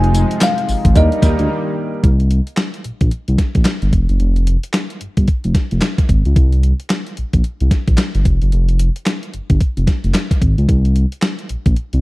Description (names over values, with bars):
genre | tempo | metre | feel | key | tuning
R&B, new jack swing | 111 BPM | 4/4 | swing 60% on 16ths | unclear | A4 = 443 Hz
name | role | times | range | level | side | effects
kalimba | melody | 0.0-1.7 s | Eb5 to Ab5 | -21 LUFS | left 1 dB | none
warm baby grand piano | accompaniment | 0.0-2.1 s | G3 to C5 | -24 LUFS | right 6 dB | none
chorused pulse-width pad | sustained chords | 0.0-2.0 s | C3 to Eb4 | -22 LUFS | left 2 dB | none
smooth synth bass | bass | 0.0-12.0 s | F1 to Eb2 | -14 LUFS | equal | none
gated 80s digital drum machine | drums | 0.0-12.0 s | handclaps, hi-hat, kick drum, snare drum, tambourine | -16 LUFS | equal | gated reverb, gated reverb snare, overdrive
room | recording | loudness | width
little or no reverb | dry, close 1970s-style studio recording | -13 LUFS | side -20 dB against mid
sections
0.0-2.0 A section; 2.0-12.0 B section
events
break 1.5-2.0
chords
0.0 Fm7; 1.0 Ebmaj7; 2.0 C5; 3.9 N.C.; 6.4 C5; 8.3 N.C.; 10.7 C5